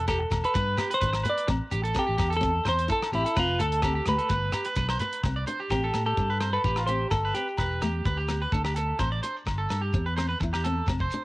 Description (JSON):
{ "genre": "highlife guitar band", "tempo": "128 BPM", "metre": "4/4", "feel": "straight", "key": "C major", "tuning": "A4 = 443 Hz", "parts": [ { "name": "picked steel-string acoustic guitar", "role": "accompaniment", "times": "0.0-11.2 s", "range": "A3 to E4", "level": "-36 LUFS", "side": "left 3 dB", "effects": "none" }, { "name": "electric guitar at the edge of break-up", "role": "arpeggios", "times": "0.0-11.2 s", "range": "F4 to D5", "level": "-31 LUFS", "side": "right 2 dB", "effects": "none" }, { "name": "fingered electric bass", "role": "bass", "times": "0.0-11.1 s", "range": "E1 to A2", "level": "-29 LUFS", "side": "equal", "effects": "none" }, { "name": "semi-hollow electric guitar", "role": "melody", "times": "0.1-8.7 s", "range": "E4 to D5", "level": "-28 LUFS", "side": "equal", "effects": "cassette tape" }, { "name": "damped 70s drum kit", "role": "drums", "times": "0.1-11.2 s", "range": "hi-hat, kick drum, rim click", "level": "-32 LUFS", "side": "equal", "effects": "none" }, { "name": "agogo bells", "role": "percussion", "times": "0.1-11.0 s", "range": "none", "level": "-38 LUFS", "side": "left 4 dB", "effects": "none" }, { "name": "shekere", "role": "percussion", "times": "0.1-11.2 s", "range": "none", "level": "-36 LUFS", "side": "equal", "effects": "none" } ], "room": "little or no reverb", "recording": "home recording on cassette", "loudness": "-24 LUFS", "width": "side -19 dB against mid", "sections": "0.0-5.2 A section; 5.2-11.2 B section", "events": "none", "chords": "0.0 G; 1.5 Am; 3.4 F; 4.3 G; 5.2 C5; 7.1 G; 9.0 Am" }